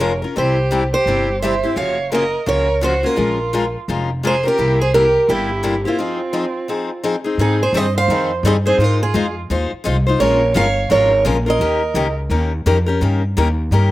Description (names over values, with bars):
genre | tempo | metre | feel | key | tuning
acoustic string swing (jazz manouche) | 171 BPM | 4/4 | swing 60% on 8ths | F minor, Ab major from 7.4 s | A4 = 441 Hz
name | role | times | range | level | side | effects
picked steel-string acoustic guitar | melody | 0.0-12.1 s | F4 to F5 | -18 LUFS | right 2 dB | slapback echo
warm violin | second line | 0.0-12.1 s | C4 to Db5 | -24 LUFS | right 3 dB | slapback echo
picked steel-string acoustic guitar | accompaniment | 0.0-13.9 s | C3 to C5 | -20 LUFS | left 4 dB | slapback echo
upright bass | bass | 0.0-13.9 s | F1 to Ab2 | -19 LUFS | equal | none
room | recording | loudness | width
light reverb | recorded outdoors, with no room sound | -15 LUFS | side -16 dB against mid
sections
0.0-7.4 A section; 7.4-13.9 B section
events
break 6.0-7.4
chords
0.4 C; 1.8 Gbmaj7; 3.2 Bbm7; 4.6 C7; 6.0 Fm7; 7.4 Abmaj7; 8.8 Fm7; 10.2 Bbm7; 11.6 Eb7